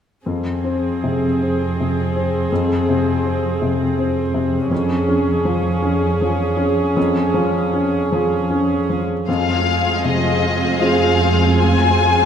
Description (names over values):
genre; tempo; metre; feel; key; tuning
cinematic; 79 BPM; 3/4; rubato; unclear; A4 = 445 Hz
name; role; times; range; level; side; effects
felt-muted upright piano; accompaniment; 0.3-12.3 s; F2 to Ab4; -20 LUFS; left 2 dB; none
rich studio viola section; accompaniment; 0.3-12.3 s; Ab3 to Ab4; -21 LUFS; right 1 dB; none
dark chamber cello section; bass; 0.3-12.3 s; F2; -22 LUFS; right 3 dB; none
rich studio violin section; melody; 9.3-12.3 s; Eb5 to Ab5; -18 LUFS; left 6 dB; none
rich studio violin section; second line; 9.3-12.3 s; F4 to Ab4; -21 LUFS; left 1 dB; none
room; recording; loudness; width
wet concert hall reverb, RT60 2.1 s; none; -16 LUFS; side -8 dB against mid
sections
0.3-9.3 A section; 9.3-12.3 B section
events
none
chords
0.3 Fm; 4.7 Db/F; 9.3 Fm